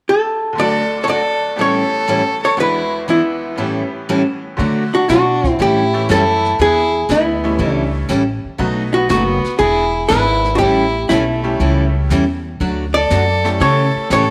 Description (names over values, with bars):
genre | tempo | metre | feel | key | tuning
country, western swing | 120 BPM | 4/4 | swing 69% on 8ths | D major | A4 = 440 Hz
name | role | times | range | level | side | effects
archtop guitar, miked and amplified | melody | 0.1-14.3 s | E4 to D5 | -18 LUFS | equal | none
tack piano | accompaniment | 0.5-14.1 s | D2 to A4 | -27 LUFS | equal | none
rich fiddle | second line | 0.6-14.3 s | A3 to A4 | -23 LUFS | equal | none
picked steel-string acoustic guitar | accompaniment | 0.6-14.2 s | A2 to A4 | -23 LUFS | equal | none
upright bass | bass | 4.6-14.3 s | E1 to D3 | -22 LUFS | equal | none
jazz brush drum kit | drums | 4.6-14.3 s | brushed snare drum, hi-hat, kick drum, snare drum | -29 LUFS | equal | none
room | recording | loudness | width
moderate echo chamber reverb, RT60 1.8 s, small room ambience | none | -16 LUFS | mono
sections
0.6-4.6 A section; 4.6-14.3 B section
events
none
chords
0.0 N.C.; 0.6 D; 1.6 A7; 2.6 E7; 3.6 A7; 4.6 D; 5.6 A7; 6.6 E7; 7.6 A7; 8.6 B7; 9.6 E7; 10.6 A7; 12.6 D; 13.6 A7/C#